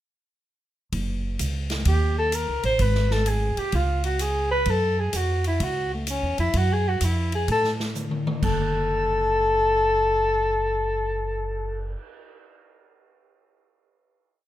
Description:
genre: jazz, small-group swing and bop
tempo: 128 BPM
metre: 4/4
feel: swing 66% on 8ths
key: F# minor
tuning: A4 = 440 Hz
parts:
  - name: upright bass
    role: bass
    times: 0.9-11.9 s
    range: F#1 to A2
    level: -25 LUFS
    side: right 1 dB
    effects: none
  - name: swinging big-band drum kit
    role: drums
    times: 0.9-12.1 s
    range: crash cymbal, cymbal swell, hi-hat, kick drum, ride cymbal, snare drum, toms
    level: -31 LUFS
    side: left 1 dB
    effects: none
  - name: breathy alto saxophone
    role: melody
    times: 1.9-12.0 s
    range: A3 to C5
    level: -23 LUFS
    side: left 1 dB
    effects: none
room: moderate studio reverb, RT60 0.8 s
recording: none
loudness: -21 LUFS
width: side -13 dB against mid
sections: 0.9-8.4 A section; 8.4-12.2 final chord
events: drum fill 8.0-8.4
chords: 0.9 F#5; 1.9 A7(b5, no3); 2.8 G#m; 3.7 C#; 4.7 F#m

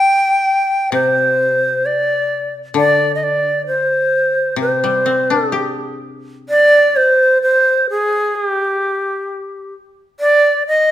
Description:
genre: japanese traditional, Japanese chamber music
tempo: 65 BPM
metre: 2/4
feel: rubato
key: unclear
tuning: A4 = 440 Hz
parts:
  - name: bright reedy long shakuhachi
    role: melody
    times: 0.0-10.9 s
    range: G4 to G5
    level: -13 LUFS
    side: equal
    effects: none
  - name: koto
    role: accompaniment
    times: 0.0-7.4 s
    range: C3 to G4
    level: -21 LUFS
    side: left 5 dB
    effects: none
room: moderate recital hall reverb, RT60 1.4 s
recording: minimal, uncompressed stereo recording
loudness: -13 LUFS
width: side -12 dB against mid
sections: 0.0-6.5 A section; 6.5-10.9 B section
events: none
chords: none

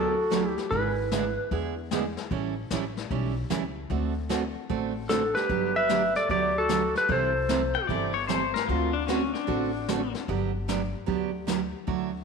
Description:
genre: country, western swing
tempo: 150 BPM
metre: 4/4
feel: swing 66% on 8ths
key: G major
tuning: A4 = 440 Hz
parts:
  - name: clean lap steel guitar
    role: melody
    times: 0.0-1.5, 5.1-7.9 s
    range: A4 to E5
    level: -26 LUFS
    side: left 2 dB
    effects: slapback echo
  - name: growling clarinet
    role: second line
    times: 0.0-1.5, 5.1-7.9 s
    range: D4 to B4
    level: -33 LUFS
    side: right 7 dB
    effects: none
  - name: picked steel-string acoustic guitar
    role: accompaniment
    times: 0.0-12.1 s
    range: C3 to A4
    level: -30 LUFS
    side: right 9 dB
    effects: none
  - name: upright bass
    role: bass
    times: 0.0-12.2 s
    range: G1 to E2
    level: -34 LUFS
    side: left 2 dB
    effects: none
  - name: jazz brush drum kit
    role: drums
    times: 0.3-12.2 s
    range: brushed snare drum, hi-hat, kick drum, snare drum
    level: -35 LUFS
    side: left 9 dB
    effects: none
  - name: pedal steel guitar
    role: second line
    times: 7.7-10.1 s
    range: C#4 to G5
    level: -29 LUFS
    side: left 10 dB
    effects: none
room: wet echo chamber reverb, RT60 1.9 s, small room ambience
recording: 1960s-style stereo with parts hard left and right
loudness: -25 LUFS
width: side -5 dB against mid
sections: 0.0-12.2 A section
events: none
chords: 0.0 Gmaj7; 0.7 E7/G#; 2.3 A7; 3.9 D7; 5.5 Gmaj7; 7.1 C6; 8.7 D7; 10.3 Gmaj7

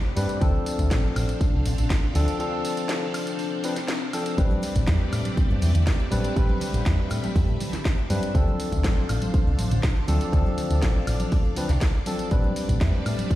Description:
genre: nu-disco, nu disco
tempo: 121 BPM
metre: 4/4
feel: straight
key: unclear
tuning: A4 = 440 Hz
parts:
  - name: string machine, full ensemble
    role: sustained chords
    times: 0.0-13.4 s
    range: A3 to F5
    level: -33 LUFS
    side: left 1 dB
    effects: phaser, ensemble chorus, sidechain pumping
  - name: barky tine electric piano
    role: accompaniment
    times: 0.2-13.4 s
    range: F3 to B4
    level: -29 LUFS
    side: left 1 dB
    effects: overdrive, sidechain pumping, tape echo
  - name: picked electric bass with an envelope filter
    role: bass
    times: 0.2-13.3 s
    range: A1 to A2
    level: -24 LUFS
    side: equal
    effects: none
  - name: house drum kit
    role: drums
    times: 0.2-13.4 s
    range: hi-hat, snare drum, tambourine, woodblock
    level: -33 LUFS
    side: equal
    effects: none
  - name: electronic kick drum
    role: drums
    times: 0.4-13.4 s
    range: none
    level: -22 LUFS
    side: equal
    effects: none
  - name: cabasa and congas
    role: percussion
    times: 4.4-13.4 s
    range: none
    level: -33 LUFS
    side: right 1 dB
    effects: none
room: little or no reverb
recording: played on a big sound system in a bare room, stone room reverb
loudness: -21 LUFS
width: side -15 dB against mid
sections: 0.0-13.4 A section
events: break 2.4-4.4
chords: 0.4 Dm7; 4.4 Am11; 8.3 Dm7; 12.3 Am11

